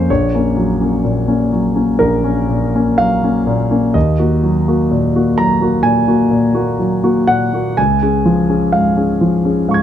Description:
neoclassical minimalist piano; 63 BPM; 4/4; rubato; A4 = 440 Hz
warm concert grand piano; solo; 0.0-9.8 s; Bb1 to Ab6; -12 LUFS; equal
light reverb; close, detailed microphones; -12 LUFS; side -10 dB against mid
0.0-9.8 A section
0.1 Gb/Bb; 4.0 Ebm; 7.8 Db

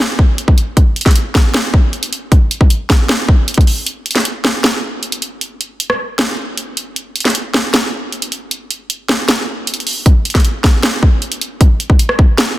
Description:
hip hop; 155 BPM; 4/4; half-time
trap drum kit; drums; 0.0-12.5 s; hi-hat, kick drum, rim click, snare drum; -11 LUFS; equal
light reverb; dense, heavily limited modern master; -12 LUFS; side -16 dB against mid
0.0-12.6 A section
break 3.9-10.1

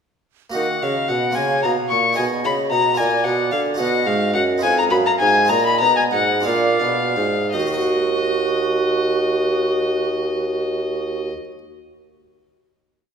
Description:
classical, baroque-style sonata movement with continuo; 54-75 BPM (dotted quarters); 6/8; straight; Eb minor; A4 = 439 Hz
harpsichord; accompaniment; 0.5-11.6 s; F2 to Gb5; -25 LUFS; right 2 dB
dark violin; melody; 0.6-11.3 s; Eb5 to Db6; -20 LUFS; left 4 dB
bright baroque flute; second line; 0.6-11.3 s; Gb4 to F5; -24 LUFS; right 3 dB
mellow bassoon; bass; 0.6-11.3 s; Eb2 to Eb3; -22 LUFS; right 2 dB
moderate concert hall reverb, RT60 2.1 s; minimal, uncompressed stereo recording; -17 LUFS; side -6 dB against mid
0.6-7.5 A section; 7.5-12.0 final chord
slowing down 3.0-7.5
0.6 Ebm; 1.4 Bbm; 2.2 Abm/Cb; 3.0 Bb; 3.8 B; 4.6 Fm7b5; 5.5 Bb7sus4; 6.5 Bb7; 7.5 Ebm

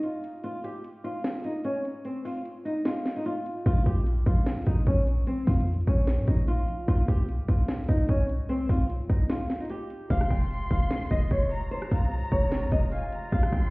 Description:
hip hop, trap; 149 BPM; 4/4; half-time; F minor; A4 = 440 Hz
flamenco guitar; melody; 0.0-13.7 s; C4 to G5; -31 LUFS; equal; low-pass filter, tape echo
trap drum kit; drums; 0.0-13.6 s; crash cymbal, hi-hat, kick drum, rim click, snare drum; -26 LUFS; equal
warm 808-style bass; bass; 3.7-13.7 s; F1 to Bb2; -26 LUFS; equal
warm studio violin section; second line; 10.1-13.7 s; Ab5 to C6; -39 LUFS; left 1 dB; tape echo
warm woodwind section; sustained chords; 10.1-13.7 s; C3 to F4; -41 LUFS; equal; stereo widening
light reverb, small room reverb; heard muffled through a wall, stone room reverb, vinyl crackle, EQ; -24 LUFS; side -25 dB against mid
0.0-10.1 A section; 10.1-13.7 B section
break 0.0-3.7, 9.3-10.1
0.0 N.C.; 3.7 Bb5; 6.9 C5; 10.1 Fm

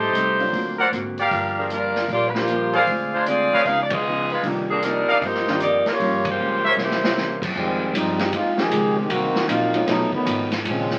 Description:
jazz, big band swing; 154 BPM; 4/4; swing 65% on 8ths; C minor, F minor from 7.6 s; A4 = 439 Hz
warm saxophone section; melody; 0.0-7.4 s; F3 to F5; -23 LUFS; equal
vintage hollow-body jazz guitar; accompaniment; 0.0-10.9 s; G2 to G4; -33 LUFS; equal
warm trumpet section; stabs; 0.0-6.7 s; G4 to A5; -23 LUFS; equal
upright bass; bass; 0.0-11.0 s; G1 to G2; -34 LUFS; equal
swinging big-band drum kit; drums; 0.1-11.0 s; crash cymbal, hi-hat, kick drum, ride cymbal, snare drum; -30 LUFS; equal
warm upright piano; accompaniment; 0.4-9.9 s; Eb3 to Ab4; -31 LUFS; equal
mellow trombone section; second line; 7.6-11.0 s; Db3 to Ab4; -24 LUFS; equal
wet studio ambience, RT60 0.5 s; very old 78 rpm record, vinyl crackle; -21 LUFS; mono
0.0-7.6 A section; 7.6-11.0 B section
band accent 3.9, 6.2; drum fill 6.8-7.2; trombone section solo 7.6-11.0
0.0 Am7b5; 0.5 D7alt; 1.3 Gm7; 2.9 Dm7b5; 3.7 Db9; 4.4 Cm11; 6.0 Gm7b5; 6.8 C7b9; 7.6 Fm9; 9.1 Cm7b5; 9.9 B7#11

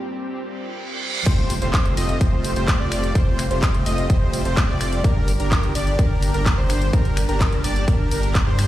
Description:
EDM, festival progressive house; 127 BPM; 4/4; straight; A4 = 439 Hz
dark baby grand piano; accompaniment; 0.0-1.3 s; G2 to G4; -44 LUFS; left 1 dB
lush unison pad; sustained chords; 0.0-8.7 s; Bb2 to A5; -31 LUFS; equal; chorus, phaser, sidechain pumping
reverse cymbal and impact; sound effects; 0.6-3.2 s; -29 LUFS; right 1 dB
wide unison lead; arpeggios; 1.3-8.7 s; Bb4 to Eb5; -29 LUFS; equal; sidechain pumping, digital delay
dense compressed supersaw; riff; 1.3-8.7 s; A3 to Eb5; -28 LUFS; right 1 dB; sidechain pumping, digital delay
saturated sub bass; bass; 1.3-8.7 s; F1 to G2; -24 LUFS; equal; sidechain pumping
electronic kick drum; drums; 1.3-8.4 s; -20 LUFS; equal; overdrive
pop drum kit; drums; 1.3-8.7 s; crash cymbal, finger snaps, handclaps, hi-hat; -27 LUFS; left 1 dB
digital ambience; played on a big sound system in a bare room, large studio reverb, high-pass filter, lossy compression artefacts; -18 LUFS; side -14 dB against mid
0.0-1.3 A section; 1.3-8.7 B section
break 0.0-1.3; build-up 0.0-1.3; filter sweep on analog synth pad 0.0-1.3; filter sweep 0.0-1.3; reverse cymbal 0.6-1.3; drop 1.3-8.7; impact 1.3-3.2
0.0 Gm; 1.3 Fadd9; 5.0 Gm

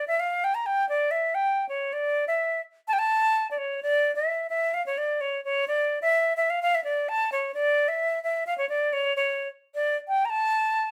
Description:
klezmer; 129 BPM; 2/4; straight; A4 = 440 Hz
breathy bright concert flute; solo; 0.0-10.9 s; C#5 to Bb5; -26 LUFS; equal
light reverb; band playing live in one room; -26 LUFS; mono
0.0-3.8 A section; 3.8-10.9 A section

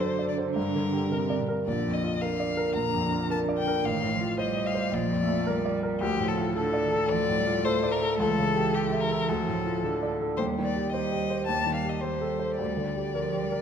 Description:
quick classical-period movement for piano trio; 110 BPM; 4/4; straight; A4 = 440 Hz
rich violin; melody; 0.0-13.6 s; G4 to Bb5; -30 LUFS; left 6 dB
rich cello; second line; 0.0-13.6 s; Bb2 to A3; -32 LUFS; right 6 dB
clear grand piano; accompaniment; 0.0-13.6 s; A1 to E5; -28 LUFS; equal
wet recital hall reverb, RT60 1.6 s; -25 LUFS; side -8 dB against mid
0.0-13.6 A section
0.0 D7/F#; 0.6 Gm; 1.7 Bb; 3.8 F7/A; 4.9 Bb; 6.0 Dm; 8.2 A7/C#; 9.3 Dm; 10.4 Cm/Eb; 11.5 Am7b5/Eb; 12.6 Gm/D

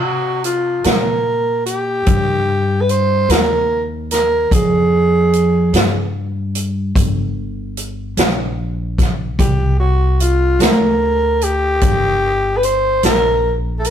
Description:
slow blues; 49 BPM (dotted quarters); 12/8; straight; C minor; A4 = 441 Hz
growling tenor saxophone; melody; 0.0-13.9 s; F4 to C5; -16 LUFS; right 1 dB
upright bass; bass; 0.0-13.9 s; G1 to C3; -18 LUFS; left 1 dB
swinging big-band drum kit; drums; 0.4-13.9 s; hi-hat, kick drum, snare drum; -18 LUFS; equal
moderate stone room reverb, RT60 1.0 s; rough rehearsal-room recording; -14 LUFS; side -9 dB against mid
0.0-13.9 A section
0.0 Cm7; 4.5 Fmadd9; 9.4 C7sus2

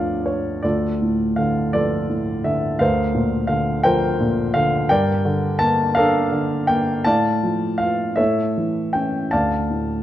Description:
classical, lyrical solo piano; 53-59 BPM (dotted quarters); 6/8; rubato; D minor; A4 = 441 Hz
warm grand piano; solo; 0.0-10.0 s; D2 to A5; -18 LUFS; equal
moderate scoring stage reverb, RT60 1.6 s; dark, warm production; -18 LUFS; side -12 dB against mid
0.6-10.0 A section
grand piano fill 0.0-0.6
0.0 Dm; 2.8 Bbadd9/D; 4.9 Gmadd9; 7.1 Dm/A; 8.2 A; 9.3 Dm

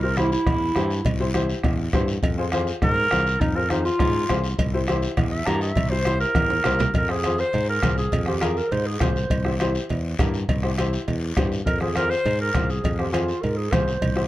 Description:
latin, cumbia; 204 BPM; 4/4; straight; F harmonic minor; A4 = 440 Hz
warm clarinet; melody; 0.0-8.3, 11.7-13.0 s; Eb4 to Bb5; -24 LUFS; right 1 dB
warm upright piano; accompaniment; 0.0-14.2 s; E4 to C5; -28 LUFS; left 2 dB
modern bright fingered electric bass; bass; 0.0-14.3 s; C2 to Ab2; -26 LUFS; equal
bombo; percussion; 0.2-14.3 s; -25 LUFS; equal
congas; percussion; 0.2-14.3 s; -31 LUFS; right 2 dB
guiro; percussion; 0.2-14.3 s; -38 LUFS; left 4 dB
cowbell and timbales; percussion; 0.5-14.2 s; -33 LUFS; right 3 dB
growling clarinet; second line; 8.3-9.6, 13.0-14.3 s; F4 to C5; -28 LUFS; right 2 dB
light reverb; dark, warm production; -20 LUFS; side -15 dB against mid
0.0-7.0 A section; 7.0-14.3 B section
clarinet solo 0.0-7.0; drum fill 6.1-7.0
0.0 C; 2.2 Fm; 4.6 C7; 7.0 Fm; 9.3 C; 11.7 Fm

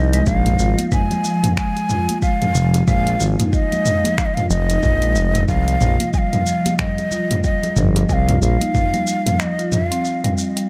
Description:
organic downtempo; 92 BPM; 4/4; swing 59% on 16ths; A4 = 440 Hz
breathy bright ney; melody; 0.0-10.4 s; Eb5 to Ab5; -25 LUFS; equal; delay
smooth gliding synth bass; bass; 0.0-8.6 s; F1 to C2; -20 LUFS; equal; sidechain pumping
marimba with medium mallets; arpeggios; 0.1-10.7 s; C3 to F4; -24 LUFS; equal; tape echo
deep house drum kit; drums; 0.1-10.7 s; finger snaps, hi-hat, shaker, toms; -25 LUFS; equal
electronic kick drum; drums; 0.3-8.9 s; -23 LUFS; equal
congas and bongos; percussion; 0.8-9.9 s; -30 LUFS; equal
light reverb; -18 LUFS; mono
0.0-10.7 A section
break 9.4-10.7
0.3 Bb5; 5.5 Csus4

